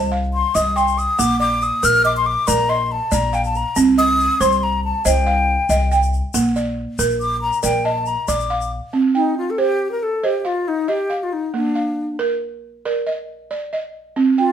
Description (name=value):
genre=west african traditional, West African string and xylophone music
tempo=93 BPM (dotted quarters)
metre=12/8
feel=straight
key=C dorian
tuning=A4 = 445 Hz
part: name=breathy mellow silver concert flute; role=melody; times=0.0-14.5 s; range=D4 to F6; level=-19 LUFS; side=left 3 dB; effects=none
part: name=balafon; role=arpeggios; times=0.0-14.5 s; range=Bb3 to G5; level=-20 LUFS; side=right 4 dB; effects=none
part: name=upright bass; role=bass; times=0.0-8.8 s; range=Bb1 to C2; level=-23 LUFS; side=left 1 dB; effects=none
part: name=tube shaker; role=percussion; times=0.6-8.7 s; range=none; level=-27 LUFS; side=left 6 dB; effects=none
room=wet studio reverb, RT60 0.7 s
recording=band playing live in one room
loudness=-16 LUFS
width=side -9 dB against mid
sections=0.0-8.9 A section; 8.9-14.5 B section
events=flute solo 0.0-8.9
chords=0.0 Cm; 1.2 Bb; 3.8 Cm; 6.3 Bb; 8.9 Cm; 11.5 Bb